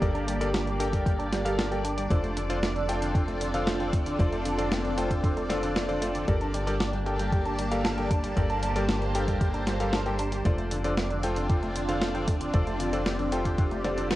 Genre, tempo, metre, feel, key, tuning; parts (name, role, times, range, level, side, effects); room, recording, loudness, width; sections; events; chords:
synthwave; 115 BPM; 4/4; straight; G minor; A4 = 441 Hz
lush unison pad; sustained chords; 0.0-14.2 s; Bb3 to A5; -32 LUFS; equal; chorus, phaser, sidechain pumping, cassette tape
electric guitar with an envelope filter; riff; 0.0-14.2 s; D3 to D4; -35 LUFS; right 1 dB; analog chorus, vintage 12-bit sampler grit, cassette tape, analog delay
clear electric grand piano; stabs; 0.0-14.2 s; F4 to G5; -32 LUFS; left 2 dB; cassette tape, analog delay
tight sequencer bass; bass; 0.0-14.2 s; F1 to G1; -32 LUFS; equal; sidechain pumping
clean 12-bit digital drum machine; drums; 0.0-14.2 s; hi-hat, snare drum, toms; -32 LUFS; equal; cassette tape
electronic kick drum; drums; 0.0-13.7 s; -26 LUFS; equal; cassette tape
moderate small room reverb, RT60 0.5 s; home recording on cassette; -25 LUFS; side -16 dB against mid
0.0-14.2 A section
0.0 Gmadd9; 2.1 Dm7/F; 6.3 Gmadd9; 10.5 Dm7/F